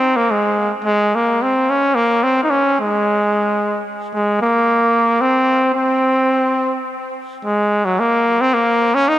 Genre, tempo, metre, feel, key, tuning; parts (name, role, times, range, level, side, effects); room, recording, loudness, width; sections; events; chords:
mexican folk; 109 BPM; 3/4; straight; A4 = 440 Hz
clear trumpet; solo; 0.0-9.2 s; Gb3 to Eb4; -14 LUFS; equal; tape echo
moderate spring reverb, RT60 2.7 s; echo-heavy mix; -14 LUFS; side -13 dB against mid
0.0-9.2 A section